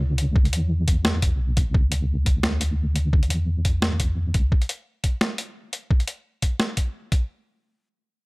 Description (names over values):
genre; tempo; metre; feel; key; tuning
half-time drum and bass; 173 BPM; 4/4; swing 56% on 16ths, half-time; C# phrygian; A4 = 442 Hz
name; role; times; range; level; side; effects
deep soft wobble bass; bass; 0.0-4.5 s; B1 to E2; -22 LUFS; equal; chorus, transformer saturation
boom bap sampler-style drum kit; drums; 0.2-7.2 s; hi-hat, snare drum; -25 LUFS; equal; none
electronic kick drum; drums; 0.4-7.2 s; none; -20 LUFS; equal; none
room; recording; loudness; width
digital ambience; dry, gritty hardware recording; -20 LUFS; side -26 dB against mid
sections
0.0-7.3 A section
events
none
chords
none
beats
0.01 | 0.35 0.70 1.05 1.40 | 1.74 2.09 2.44 2.78 | 3.13 3.48 3.82 4.17 | 4.52 4.86 5.21 5.56 | 5.90 6.25 6.60 6.95